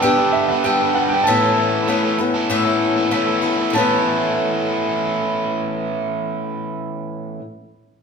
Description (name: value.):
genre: rock.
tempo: 97 BPM.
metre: 4/4.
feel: straight.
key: A mixolydian.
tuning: A4 = 440 Hz.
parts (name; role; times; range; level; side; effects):
warm concert grand piano; melody; 0.0-7.4 s; E5 to A5; -20 LUFS; right 3 dB; none.
picked swing-style acoustic guitar; accompaniment; 0.0-7.5 s; A2 to A4; -20 LUFS; left 4 dB; none.
biting overdriven guitar; riff; 0.0-7.4 s; G2 to A4; -21 LUFS; right 3 dB; none.
room: wet large studio reverb, RT60 1.4 s.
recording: band playing live in one room.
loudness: -16 LUFS.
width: side -5 dB against mid.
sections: 0.0-3.7 A section; 3.7-6.2 B section.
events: none.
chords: 0.0 Gadd9; 1.3 Aadd9.